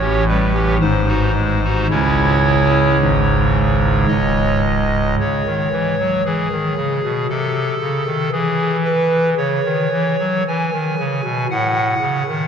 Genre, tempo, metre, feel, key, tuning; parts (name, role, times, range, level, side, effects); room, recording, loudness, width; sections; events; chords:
classical, chorale-style piece for pipe organ; 56 BPM; 3/4; uneven beats, rubato; C# minor; A4 = 440 Hz
pipe organ, clarinet reed; solo; 0.0-12.5 s; C#1 to G#5; -15 LUFS; equal
wet cathedral reverb, RT60 6.1 s; dark, warm production; -15 LUFS; side -7 dB against mid
0.0-5.2 A section; 5.2-12.5 B section
0.0 A7; 0.8 G#7; 1.9 C#m; 7.3 Cm6; 8.3 C#m; 11.5 F#m/A